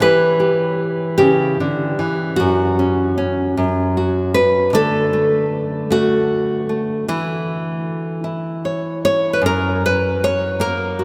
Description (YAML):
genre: folk, solo fingerstyle acoustic guitar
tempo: 51 BPM (dotted quarters)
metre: 6/8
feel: straight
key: unclear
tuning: A4 = 440 Hz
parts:
  - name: nylon-string guitar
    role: solo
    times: 0.0-11.0 s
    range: F#2 to C#5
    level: -18 LUFS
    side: equal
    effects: none
room: wet cathedral reverb, RT60 5.8 s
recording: in a vast, echoing space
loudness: -18 LUFS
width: mono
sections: 0.0-11.0 A section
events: none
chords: 0.0 Em7; 2.4 F#5; 4.7 D; 7.1 C#m/E; 9.4 F#